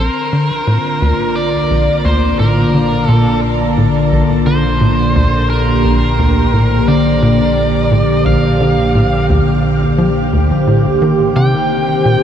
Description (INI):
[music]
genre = ambient, sequencer-driven space music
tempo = 87 BPM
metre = 4/4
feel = straight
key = unclear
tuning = A4 = 441 Hz
[part]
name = biting lead guitar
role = melody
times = 0.0-12.2 s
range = Bb4 to G5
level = -18 LUFS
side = equal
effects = overdrive, tape echo
[part]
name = phased analog pad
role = sustained chords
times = 0.0-12.2 s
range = D3 to D5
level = -14 LUFS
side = equal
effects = phaser, chorus
[part]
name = tight sequencer bass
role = riff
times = 0.0-12.2 s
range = Bb1 to F3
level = -16 LUFS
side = equal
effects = analog chorus, tape echo
[part]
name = analog drone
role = bass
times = 1.4-12.2 s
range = Bb1 to C2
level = -19 LUFS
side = equal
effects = chorus
[sound]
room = wet shimmer reverb, RT60 8.0 s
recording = dark, warm production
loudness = -11 LUFS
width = side -9 dB against mid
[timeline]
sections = 0.0-12.2 A section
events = none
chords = 0.0 Bb; 11.0 Cm